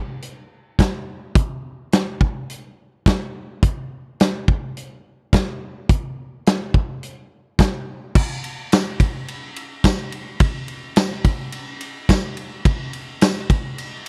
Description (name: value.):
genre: rock.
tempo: 106 BPM.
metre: 4/4.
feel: straight.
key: none.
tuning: none.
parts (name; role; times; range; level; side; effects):
big rock drum kit; drums; 0.2-14.1 s; crash cymbal, hi-hat, kick drum, ride cymbal, snare drum; -21 LUFS; equal; none.
tambourine; percussion; 8.7-13.4 s; none; -34 LUFS; equal; none.
room: studio reverb.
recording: dry, close 1970s-style studio recording.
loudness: -21 LUFS.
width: mono.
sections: 0.0-8.2 A section; 8.2-14.1 A section.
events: none.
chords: none.